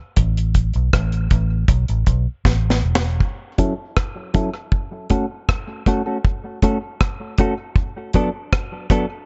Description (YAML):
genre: dub reggae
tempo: 79 BPM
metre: 4/4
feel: straight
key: F# minor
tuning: A4 = 438 Hz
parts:
  - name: vintage muted fingered electric bass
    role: bass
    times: 0.2-3.2 s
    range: E1 to B1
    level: -21 LUFS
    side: equal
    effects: none
  - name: deep reggae drum kit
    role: drums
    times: 0.2-9.1 s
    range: hi-hat, kick drum, rim click, snare drum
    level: -21 LUFS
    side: equal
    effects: none
  - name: clean electric guitar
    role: accompaniment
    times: 3.6-9.1 s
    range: F#3 to A4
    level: -25 LUFS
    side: equal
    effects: low-pass filter, tape echo
room: small room ambience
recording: nothing above 7.8 kHz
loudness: -20 LUFS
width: mono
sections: 0.0-3.2 A section; 3.2-9.3 B section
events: break 0.0-3.2; drum fill 2.4-3.2; filter sweep on clean electric guitar 3.2-9.3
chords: 0.2 N.C.; 1.7 Esus4; 3.2 F#m7; 4.7 A6; 7.8 Bm7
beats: | 0.17 0.93 1.69 2.45 | 3.21 3.96 4.72 5.48 | 6.24 7.00 7.76 8.52